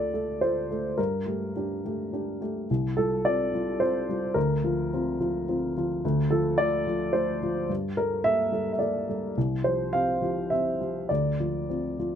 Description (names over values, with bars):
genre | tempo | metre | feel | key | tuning
neoclassical minimalist piano | 107 BPM | 3/4 | rubato | D minor | A4 = 440 Hz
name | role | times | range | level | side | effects
dark upright piano | solo | 0.0-12.2 s | C2 to F5 | -25 LUFS | equal | none
room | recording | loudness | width
light reverb | close, detailed microphones | -25 LUFS | side -8 dB against mid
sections
0.0-12.2 A section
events
none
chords
0.0 Dm; 1.0 Gmadd9; 2.7 Csus4; 4.4 Bbadd9/D; 6.0 Dm; 7.7 Gmadd9; 9.4 Csus4; 11.1 Dm7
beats
0.42 | 0.98 1.55 2.12 | 2.68 3.24 3.80 | 4.36 4.91 5.47 | 6.03 6.58 7.14 | 7.69 8.24 8.80 | 9.36 9.92 10.50 | 11.09 11.69